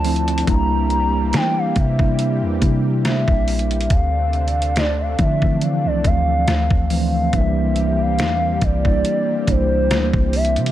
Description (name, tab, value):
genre	contemporary R&B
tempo	70 BPM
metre	4/4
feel	swing 54% on 16ths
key	unclear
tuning	A4 = 441 Hz
part	gliding portamento lead	melody	0.0-10.7 s	C5 to Bb5	-22 LUFS	equal	chorus
part	mellow tine electric piano	accompaniment	0.0-10.7 s	E3 to F4	-22 LUFS	equal	medium stereo tremolo
part	lush unison pad	sustained chords	0.0-10.7 s	C3 to G4	-29 LUFS	equal	chorus
part	clean 808-style bass	bass	0.0-10.7 s	Bb1 to E3	-21 LUFS	equal	none
part	detuned 8-bit digital drum machine	drums	0.0-10.7 s	hi-hat, kick drum, rim click, snare drum	-20 LUFS	equal	none
room	digital ambience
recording	none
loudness	-16 LUFS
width	side -13 dB against mid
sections	0.0-10.7 A section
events	none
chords	0.5 C7; 3.9 Dm7; 7.3 C7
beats	| 0.47 1.33 2.19 3.05 | 3.90 4.76 5.62 6.47 | 7.33 8.19 9.05 9.90